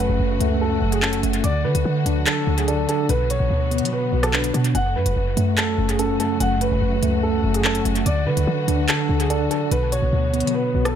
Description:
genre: hip hop, drill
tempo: 145 BPM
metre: 4/4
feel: half-time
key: F# minor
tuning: A4 = 440 Hz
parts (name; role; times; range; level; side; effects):
- dark concert grand piano; melody; 0.0-10.9 s; G#4 to F#5; -25 LUFS; right 2 dB; dub echo
- mellow tine electric piano; accompaniment; 0.0-11.0 s; F#2 to D5; -23 LUFS; equal; medium stereo tremolo
- warm studio string section; sustained chords; 0.0-11.0 s; C#3 to F#4; -30 LUFS; left 2 dB; none
- short 808-style bass; bass; 0.0-11.0 s; F#1 to F#3; -22 LUFS; equal; none
- drill drum kit; drums; 0.4-10.9 s; handclaps, hi-hat, rim click; -25 LUFS; equal; dub echo
room: digital ambience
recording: echo-heavy mix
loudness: -18 LUFS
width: side -9 dB against mid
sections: 0.0-11.0 A section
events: none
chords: 0.0 F#m; 1.4 D; 3.1 Bm; 4.7 F#m; 8.1 D; 9.7 Bm

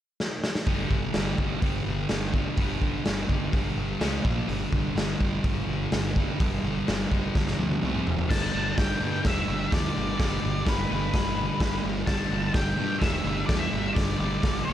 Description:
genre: garage rock duo or trio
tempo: 126 BPM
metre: 4/4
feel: straight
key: G major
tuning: A4 = 441 Hz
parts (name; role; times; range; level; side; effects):
- raw garage drum kit; drums; 0.2-14.5 s; crash cymbal, hi-hat, kick drum, snare drum, toms; -27 LUFS; equal; none
- fuzz guitar; riff; 0.7-14.7 s; F2 to C#4; -29 LUFS; equal; distortion
- fuzz picked electric bass; bass; 0.7-14.7 s; E1 to G2; -32 LUFS; equal; overdrive, tube saturation
- octave-fuzz lead guitar; melody; 8.3-14.7 s; B4 to A5; -31 LUFS; left 2 dB; distortion
room: little or no reverb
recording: none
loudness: -24 LUFS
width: side -11 dB against mid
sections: 0.7-8.3 A section; 8.3-14.7 B section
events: drum fill 0.2-0.7, 7.3-8.3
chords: 0.0 N.C.; 0.7 G5; 4.0 C#5; 4.2 Bb5; 4.5 G5; 7.8 C5; 8.1 F5; 8.3 G5

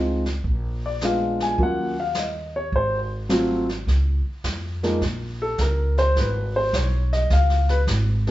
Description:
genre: jazz piano trio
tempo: 105 BPM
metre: 4/4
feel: swing 68% on 8ths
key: Db major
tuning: A4 = 442 Hz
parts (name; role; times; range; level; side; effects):
- dark grand piano; melody; 0.0-8.3 s; F3 to Ab5; -23 LUFS; left 1 dB; none
- upright bass; bass; 0.0-8.3 s; Ab1 to F2; -23 LUFS; equal; none
- jazz brush drum kit; drums; 0.3-8.3 s; brushed snare drum, hi-hat, kick drum, snare drum; -29 LUFS; right 1 dB; none
room: moderate large studio reverb, RT60 0.9 s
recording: band playing live in one room, nothing above 7.7 kHz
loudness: -20 LUFS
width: side -15 dB against mid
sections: 0.0-3.9 A section; 3.9-8.3 B section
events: none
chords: 0.5 Bb7b9; 1.6 Ebm7; 2.7 Ab7b9; 3.9 Db6; 6.2 Abm; 7.3 Db

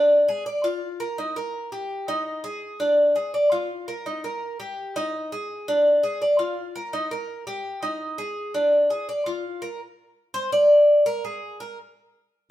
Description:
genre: latin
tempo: 167 BPM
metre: 4/4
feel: straight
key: Eb major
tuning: A4 = 441 Hz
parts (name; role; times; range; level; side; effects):
- Cuban tres; solo; 0.0-11.8 s; D4 to D5; -21 LUFS; equal; none
room: wet stone room reverb, RT60 1.2 s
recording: band playing live in one room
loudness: -21 LUFS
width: side -13 dB against mid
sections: 0.0-9.8 A section; 9.8-12.5 B section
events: Cuban tres solo 9.8-12.5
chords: none

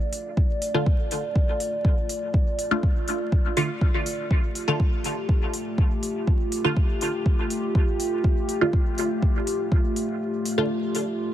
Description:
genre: dub techno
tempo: 122 BPM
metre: 4/4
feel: straight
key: D minor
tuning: A4 = 440 Hz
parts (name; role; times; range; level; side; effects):
- dark analog pad; sustained chords; 0.0-11.3 s; A3 to D5; -28 LUFS; equal; chorus, phaser, sidechain pumping
- electronic hi-hat; drums; 0.1-11.0 s; none; -33 LUFS; left 1 dB; none
- electronic kick drum; drums; 0.4-9.8 s; none; -21 LUFS; equal; none
- filtered dub chord stab; stabs; 0.7-10.7 s; D3 to F4; -28 LUFS; right 1 dB; phaser, sidechain pumping, dub echo
room: light reverb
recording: vinyl crackle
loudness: -22 LUFS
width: side -12 dB against mid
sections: 0.0-11.3 A section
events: break 10.2-11.3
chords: 0.0 Dm

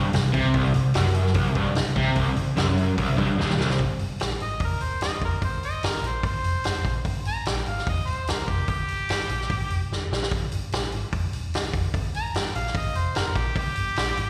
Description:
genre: blues rock power trio and southern rock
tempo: 147 BPM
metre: 4/4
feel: straight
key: C minor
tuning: A4 = 440 Hz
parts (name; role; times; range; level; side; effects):
- crunchy overdriven guitar; riff; 0.0-3.8 s; C2 to C3; -25 LUFS; equal; harmonic tremolo, slapback echo
- vintage muted picked electric bass; bass; 0.0-14.3 s; C1 to C2; -30 LUFS; equal; none
- vintage drum kit; drums; 0.1-14.3 s; hi-hat, kick drum, snare drum; -30 LUFS; equal; slapback echo
- warm harmonica; melody; 4.4-14.3 s; G4 to Bb5; -32 LUFS; equal; overdrive, plate reverb, slapback echo
room: light reverb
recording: live gig heard through the venue's PA, recital hall reverb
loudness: -25 LUFS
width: mono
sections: 0.0-3.8 A section; 3.8-14.3 B section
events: drum fill 3.4-3.8, 9.9-10.3; harmonica solo 3.8-14.3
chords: 0.0 C5

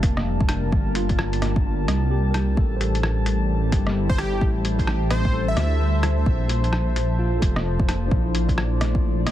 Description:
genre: future garage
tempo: 130 BPM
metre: 4/4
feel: swing 62% on 16ths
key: unclear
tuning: A4 = 439 Hz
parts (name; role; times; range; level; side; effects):
- overdriven tine electric piano; accompaniment; 0.0-9.3 s; A3 to C5; -32 LUFS; right 2 dB; auto-pan, sidechain pumping, tape echo
- warbly tape-like pad; sustained chords; 0.0-9.3 s; F3 to A5; -28 LUFS; left 3 dB; chorus, built-in reverb, sidechain pumping
- dark detuned saw bass; bass; 0.0-9.3 s; F1 to D2; -22 LUFS; equal; none
- electronic kick drum; drums; 0.0-9.0 s; none; -22 LUFS; equal; overdrive, vintage 12-bit sampler grit
- lo-fi sampler-style drum kit; drums; 0.0-9.3 s; hi-hat, rim click; -28 LUFS; equal; overdrive, vintage 12-bit sampler grit
- plucky unison lead; melody; 4.1-6.1 s; G4 to E5; -31 LUFS; equal; tape echo
room: little or no reverb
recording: dense, heavily limited modern master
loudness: -19 LUFS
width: side -12 dB against mid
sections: 0.0-9.3 A section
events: none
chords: 0.0 Gm7; 2.6 Am7; 6.3 Bbmaj7

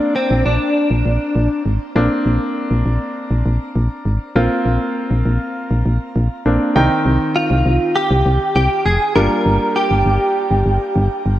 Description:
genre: synth-pop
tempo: 100 BPM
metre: 4/4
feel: straight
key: unclear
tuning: A4 = 440 Hz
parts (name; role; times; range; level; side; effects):
- direct-recorded clean electric guitar; melody; 0.0-1.6, 7.4-11.2 s; C4 to Bb4; -18 LUFS; equal; ensemble chorus, slapback echo, shimmer reverb
- clear baby grand piano; accompaniment; 0.0-11.4 s; Eb3 to G5; -20 LUFS; equal; shimmer reverb
- solid FM bass; bass; 0.3-11.4 s; F1 to C2; -15 LUFS; equal; none
room: moderate lush hall reverb, RT60 2.5 s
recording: dark, warm production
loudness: -14 LUFS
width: side -13 dB against mid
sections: 0.0-2.0 A section; 2.0-6.8 B section; 6.8-11.4 C section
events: none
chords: 0.0 Bbadd9; 6.8 Cm; 9.2 Gm7

